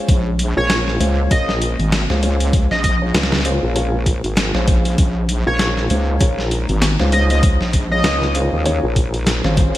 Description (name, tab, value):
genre	glitch hop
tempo	98 BPM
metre	4/4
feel	swing 58% on 16ths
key	Bb minor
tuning	A4 = 440 Hz
part	warbly tape-like pad	sustained chords	0.0-9.8 s	Ab3 to Eb4	-30 LUFS	left 1 dB	none
part	dark concert grand piano	stabs	0.0-9.8 s	Db4 to Db5	-24 LUFS	left 1 dB	vintage 12-bit sampler grit, sidechain pumping, ping-pong delay
part	wobble bass	bass	0.1-9.7 s	Ab1 to Db2	-17 LUFS	equal	chorus, tube saturation
part	boom bap sampler-style drum kit	drums	0.1-9.8 s	hi-hat, snare drum	-21 LUFS	equal	small room ambience, gated reverb
part	electronic kick drum	drums	0.1-9.7 s	none	-16 LUFS	equal	overdrive, small room ambience
part	sync lead	melody	0.6-8.3 s	Db5 to Eb5	-23 LUFS	equal	chorus, ping-pong delay
part	vowel-sweep wobble bass	bass	0.6-9.4 s	Ab1 to Eb2	-19 LUFS	equal	chorus, tube saturation
room	light reverb, digital ambience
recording	bright 1980s-style digital production, vinyl crackle, lossy compression artefacts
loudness	-15 LUFS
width	side -14 dB against mid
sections	0.0-9.8 A section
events	none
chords	0.0 Bbm9